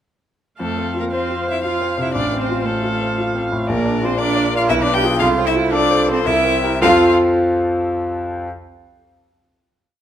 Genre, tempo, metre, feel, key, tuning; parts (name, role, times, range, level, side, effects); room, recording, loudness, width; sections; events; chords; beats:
quick classical-period movement for piano quartet; 116 BPM; 3/4; uneven beats, rubato; F major; A4 = 440 Hz
rich violin; melody; 0.6-7.1 s; A4 to G5; -21 LUFS; left 7 dB
rich cello; second line; 0.6-7.1 s; A3 to G4; -21 LUFS; right 6 dB
bright concert grand piano; accompaniment; 0.6-8.5 s; A1 to F5; -18 LUFS; left 1 dB
warm viola; accompaniment; 0.6-7.1 s; F4 to F5; -26 LUFS; right 3 dB
moderate recital hall reverb, RT60 1.6 s; close, detailed microphones; -15 LUFS; side -10 dB against mid
0.6-6.8 A section; 6.8-8.4 final chord
0.6 F5; 2.1 F/A; 3.7 Bb; 4.7 Bdim7; 5.2 F/C; 6.3 C7; 6.8 F
| 0.59 1.12 1.64 | 2.14 2.65 3.17 | 3.67 4.18 4.68 | 5.20 5.71 6.25 | 6.81 7.36 7.90